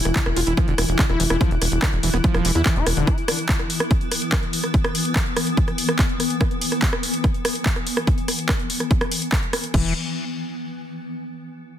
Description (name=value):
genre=psychedelic trance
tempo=144 BPM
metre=4/4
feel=straight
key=unclear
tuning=A4 = 440 Hz
part: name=swarming drone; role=sustained chords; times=0.0-9.8 s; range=E3 to E4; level=-26 LUFS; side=left 2 dB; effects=built-in reverb, sidechain pumping
part: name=tight sequencer bass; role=bass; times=0.0-3.0, 9.7-9.9 s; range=E1 to E2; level=-22 LUFS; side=equal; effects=tube saturation
part: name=techno drum kit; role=drums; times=0.1-9.8 s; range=crash cymbal, handclaps, hi-hat, rim click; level=-24 LUFS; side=equal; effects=overdrive, studio reverb
part: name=screaming distorted acid line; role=riff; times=0.2-3.1, 9.7-9.9 s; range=D3 to F4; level=-26 LUFS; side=moving between left 7 dB and right 7 dB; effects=distortion, chorus, auto-pan, sidechain pumping, digital delay
part: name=electronic kick drum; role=drums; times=0.2-9.8 s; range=none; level=-20 LUFS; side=equal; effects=overdrive, studio reverb
room=little or no reverb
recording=dense, heavily limited modern master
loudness=-18 LUFS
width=side -10 dB against mid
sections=0.0-9.7 A section; 9.7-11.4 B section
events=none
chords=0.0 E5; 9.7 N.C.